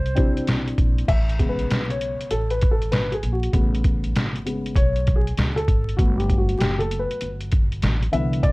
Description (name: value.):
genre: hip hop, jazz-hop.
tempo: 98 BPM.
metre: 4/4.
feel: swing 66% on 16ths.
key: A major.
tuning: A4 = 440 Hz.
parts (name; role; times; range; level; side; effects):
mellow hollow silver concert flute; melody; 0.0-0.5 s; C5; -31 LUFS; right 2 dB; plate reverb.
upright bass; bass; 0.0-8.5 s; F#1 to C#2; -25 LUFS; equal; none.
trip hop sampler-style drum kit; drums; 0.1-8.5 s; crash cymbal, hi-hat, kick drum, snare drum; -21 LUFS; equal; none.
dark concert grand piano; accompaniment; 0.2-8.5 s; C#3 to E5; -25 LUFS; left 1 dB; plate reverb.
room: light reverb.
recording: dark, warm production, vinyl crackle.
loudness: -19 LUFS.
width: side -24 dB against mid.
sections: 0.0-1.1 A section; 1.1-8.5 B section.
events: grand piano solo 1.1-8.5.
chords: 0.0 Cmaj9; 1.1 Amaj9; 6.0 Gmaj9.